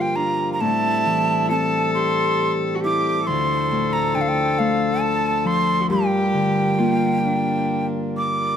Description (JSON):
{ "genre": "celtic folk, Celtic slow air", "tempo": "45 BPM (dotted quarters)", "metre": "6/8", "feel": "rubato", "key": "G dorian", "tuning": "A4 = 440 Hz", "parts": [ { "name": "breathy low whistle", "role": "melody", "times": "0.0-8.6 s", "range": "F5 to D6", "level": "-22 LUFS", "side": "right 2 dB", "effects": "none" }, { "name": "rich cello", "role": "second line", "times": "0.0-8.1 s", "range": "D4 to A4", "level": "-25 LUFS", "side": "left 4 dB", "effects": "none" }, { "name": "Celtic harp", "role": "accompaniment", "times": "0.0-8.6 s", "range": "D2 to G4", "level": "-23 LUFS", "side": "left 2 dB", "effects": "none" }, { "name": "pedal harmonium", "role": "sustained chords", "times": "0.0-8.6 s", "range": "F3 to C5", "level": "-29 LUFS", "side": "right 3 dB", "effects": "none" } ], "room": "moderate concert hall reverb, RT60 1.9 s", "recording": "close, detailed microphones", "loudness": "-18 LUFS", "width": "side -8 dB against mid", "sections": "0.0-8.6 A section", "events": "none", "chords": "0.0 Gm7; 0.6 Am7; 3.3 Dm7; 5.9 Gm7" }